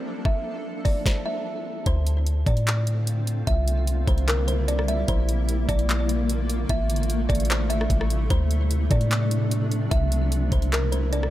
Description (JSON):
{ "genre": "hip hop, atmospheric cloud-rap", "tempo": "149 BPM", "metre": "4/4", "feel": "half-time", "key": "D minor", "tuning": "A4 = 440 Hz", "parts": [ { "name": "shimmering ambient pad", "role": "sustained chords", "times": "0.0-11.3 s", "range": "C3 to A4", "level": "-30 LUFS", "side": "equal", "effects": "chorus, built-in reverb, sidechain pumping, low-pass filter" }, { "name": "kalimba", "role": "melody", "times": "0.3-11.3 s", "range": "Bb4 to E5", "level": "-30 LUFS", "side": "equal", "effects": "low-pass filter, digital delay" }, { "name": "trap drum kit", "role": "drums", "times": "0.3-11.3 s", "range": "handclaps, hi-hat, kick drum, rim click, snare drum", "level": "-25 LUFS", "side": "equal", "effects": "none" }, { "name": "soft 808-style bass", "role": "bass", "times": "1.9-11.3 s", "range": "A1 to A2", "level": "-23 LUFS", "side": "equal", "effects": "none" } ], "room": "little or no reverb", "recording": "none", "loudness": "-21 LUFS", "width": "side -14 dB against mid", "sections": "0.0-1.9 A section; 1.9-11.3 B section", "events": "none", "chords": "0.3 Am7; 1.9 Dm7; 3.5 C7; 5.1 Bbmaj7; 6.7 Am7; 8.3 Dm7; 9.9 C7" }